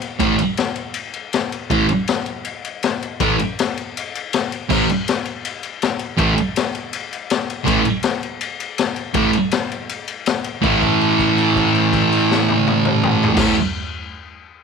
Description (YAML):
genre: garage rock duo or trio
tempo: 162 BPM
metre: 4/4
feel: straight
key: unclear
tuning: A4 = 435 Hz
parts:
  - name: raw garage drum kit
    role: drums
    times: 0.0-13.5 s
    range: crash cymbal, kick drum, ride cymbal, snare drum, toms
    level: -22 LUFS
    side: left 5 dB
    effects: none
  - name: thick fuzz guitar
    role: riff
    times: 0.2-13.5 s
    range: A2 to A3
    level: -16 LUFS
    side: right 2 dB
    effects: distortion
room: light reverb, small room ambience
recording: 1960s-style stereo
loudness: -17 LUFS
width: side -5 dB against mid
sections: 0.0-10.6 A section; 10.6-13.6 B section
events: held note 10.6-13.4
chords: 0.0 A5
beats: | 0.19 0.57 0.95 1.32 | 1.70 2.08 2.45 2.83 | 3.20 3.58 3.95 4.32 | 4.70 5.07 5.44 5.81 | 6.19 6.56 6.93 7.30 | 7.67 8.04 8.41 8.78 | 9.15 9.52 9.89 10.26 | 10.63 11.00 11.38 11.74 | 12.12 12.48 12.86 13.22